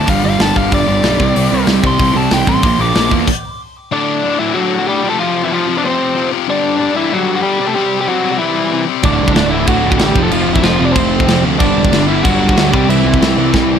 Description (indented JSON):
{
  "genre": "punk rock",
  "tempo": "187 BPM",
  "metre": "4/4",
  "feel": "straight",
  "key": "unclear",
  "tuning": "A4 = 439 Hz",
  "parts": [
    { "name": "biting lead guitar", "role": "melody", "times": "0.0-13.8 s", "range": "E3 to D6", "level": "-16 LUFS", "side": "equal", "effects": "overdrive, digital delay" },
    { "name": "fuzz guitar", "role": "riff", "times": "0.0-3.3, 9.0-13.8 s", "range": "D2 to C4", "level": "-19 LUFS", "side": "right 1 dB", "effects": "distortion" },
    { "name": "overdriven semi-hollow guitar", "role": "riff", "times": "0.0-3.3, 9.0-13.8 s", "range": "D2 to C4", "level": "-18 LUFS", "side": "right 15 dB", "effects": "none" },
    { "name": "tight distorted guitar", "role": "riff", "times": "0.0-13.8 s", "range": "D2 to C4", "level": "-18 LUFS", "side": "left 14 dB", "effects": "distortion" },
    { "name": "fuzz picked electric bass", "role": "bass", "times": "0.0-3.2, 9.0-13.8 s", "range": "D1 to E2", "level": "-18 LUFS", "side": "equal", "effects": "overdrive" },
    { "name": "tight metal drum kit", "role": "drums", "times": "0.1-3.4, 9.0-13.6 s", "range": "crash cymbal, hi-hat, kick drum, snare drum", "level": "-16 LUFS", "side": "equal", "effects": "none" }
  ],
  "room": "little or no reverb",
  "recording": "none",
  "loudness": "-11 LUFS",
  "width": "side -8 dB against mid",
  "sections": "0.0-3.9 A section; 3.9-13.8 B section",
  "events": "lead electric guitar solo 0.0-3.9; stop 3.3-3.9; drum fill 13.5",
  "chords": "0.1 G5; 1.2 C5; 2.6 Bb; 3.9 D; 5.0 F5; 6.5 G5; 7.6 C; 9.0 D; 10.2 F5; 11.6 G5; 12.7 C"
}